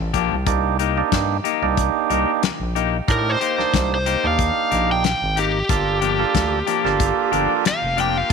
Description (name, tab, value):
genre	straight-eighth soul blues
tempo	92 BPM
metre	4/4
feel	swing 54% on 16ths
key	unclear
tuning	A4 = 439 Hz
part	growling FM bass	bass	0.0-8.3 s	F1 to A2	-24 LUFS	equal	none
part	clean electric guitar	stabs	0.1-8.2 s	F3 to G4	-24 LUFS	left 12 dB	none
part	warm soul drum kit	drums	0.1-8.3 s	hi-hat, kick drum, snare drum	-23 LUFS	left 5 dB	none
part	percussive tonewheel organ	accompaniment	0.5-8.3 s	Bb3 to Bb4	-23 LUFS	right 13 dB	overdrive
part	overdriven electric guitar	melody	3.1-8.3 s	G4 to G5	-22 LUFS	left 1 dB	none
part	bright horn section	sustained chords	5.7-8.3 s	Bb3 to G4	-30 LUFS	left 1 dB	none
room	light reverb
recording	1960s-style stereo with parts hard left and right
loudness	-17 LUFS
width	side -5 dB against mid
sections	0.0-8.3 A section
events	overdriven electric guitar solo 0.0-8.3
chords	0.5 Cm7; 5.7 Gm7